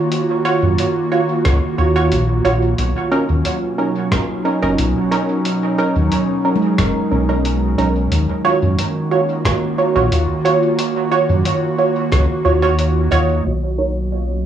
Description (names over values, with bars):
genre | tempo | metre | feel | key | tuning
ambient dub | 90 BPM | 4/4 | straight | Eb minor | A4 = 440 Hz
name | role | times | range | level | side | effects
airy breathy pad | sustained chords | 0.0-14.5 s | B2 to Gb4 | -20 LUFS | right 1 dB | chorus
lo-fi sampler-style drum kit | drums | 0.1-14.3 s | hi-hat, rim click | -26 LUFS | equal | dub echo
filtered dub chord stab | stabs | 0.5-13.9 s | C#4 to Db5 | -19 LUFS | right 3 dB | chorus, dub echo
round analog bass | bass | 0.6-14.5 s | F#1 to Gb2 | -17 LUFS | equal | none
electronic kick drum | drums | 1.4-12.3 s | none | -20 LUFS | equal | none
handpan | arpeggios | 6.6-8.9, 13.1-14.5 s | Ab3 to Eb5 | -25 LUFS | left 3 dB | dub echo
room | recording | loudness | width
moderate spring reverb, RT60 2.5 s | low-pass filter, studio ambience | -14 LUFS | side -10 dB against mid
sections
0.0-13.5 A section; 13.5-14.5 B section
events
filter sweep on analog synth pad 13.5-14.5; filter sweep on synth stab 13.5-14.5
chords
0.0 Ebm9; 2.8 Bmaj9; 8.1 Ebm9; 13.5 Bmaj9